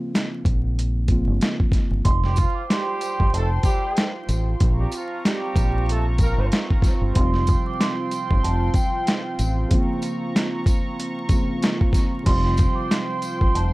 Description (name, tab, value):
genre	hip hop, boom-bap hip-hop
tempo	94 BPM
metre	4/4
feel	swing 55% on 16ths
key	unclear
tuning	A4 = 437 Hz
part	mellow tine electric piano	accompaniment	0.0-2.1, 7.1-13.7 s	C3 to F4	-28 LUFS	equal	high-pass filter, low-pass filter
part	dusty soul sampler-style drum kit	drums	0.2-13.7 s	crash cymbal, hi-hat, kick drum, snare drum	-20 LUFS	equal	overdrive
part	deep dub fingered electric bass	bass	0.5-13.7 s	F1 to Bb1	-22 LUFS	equal	none
part	vibraphone with soft mallets	melody	2.0-13.7 s	G5 to D6	-27 LUFS	right 3 dB	high-pass filter, low-pass filter, tape echo
part	warm analog pad	sustained chords	2.0-13.7 s	C4 to Db6	-30 LUFS	right 2 dB	chorus, high-pass filter, low-pass filter
part	warm horn section	stabs	2.2-6.5 s	F3 to Bb4	-30 LUFS	right 2 dB	high-pass filter, low-pass filter, tape echo
part	tambourine	percussion	2.4-13.4 s	none	-41 LUFS	left 2 dB	none
room	little or no reverb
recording	dark, warm production, vinyl crackle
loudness	-19 LUFS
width	side -20 dB against mid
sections	0.0-2.1 A section; 2.1-12.3 B section; 12.3-13.7 B section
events	none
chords	0.0 Bbmadd9; 2.1 Fsus2; 4.6 Bbmadd9; 7.2 Fsus2; 9.7 Bbmadd9; 12.3 Fsus2